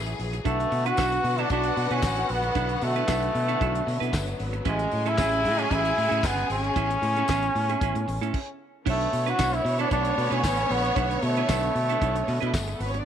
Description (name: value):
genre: disco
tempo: 114 BPM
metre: 4/4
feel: straight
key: B dorian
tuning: A4 = 440 Hz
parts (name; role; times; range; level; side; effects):
- brilliant trombone; melody; 0.0-12.8 s; G#3 to F#4; -26 LUFS; equal; none
- warm studio violin section; second line; 0.0-13.1 s; G#3 to G#5; -32 LUFS; equal; none
- rich studio string section; sustained chords; 0.0-13.0 s; C#3 to G#4; -35 LUFS; left 1 dB; none
- fingered electric bass; bass; 0.0-13.0 s; G1 to B2; -29 LUFS; left 1 dB; none
- clean electric guitar; accompaniment; 0.1-13.0 s; C#4 to B4; -32 LUFS; right 14 dB; none
- damped 70s drum kit; drums; 0.1-13.1 s; crash cymbal, handclaps, hi-hat, kick drum, snare drum; -32 LUFS; equal; none
- tambourine; percussion; 1.0-12.7 s; none; -42 LUFS; left 13 dB; none
room: light reverb, small room ambience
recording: 1960s-style stereo with parts hard left and right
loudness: -23 LUFS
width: side -9 dB against mid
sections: 0.0-8.9 A section; 8.9-13.1 A section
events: stop 8.3-8.9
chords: 0.5 Bm7; 4.7 Amaj7; 8.9 Bm11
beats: | 0.45 0.98 1.50 2.03 | 2.55 3.08 3.61 4.13 | 4.66 5.18 5.71 6.24 | 6.76 7.29 7.81 8.34 | 8.86 9.39 9.91 10.44 | 10.96 11.49 12.01 12.54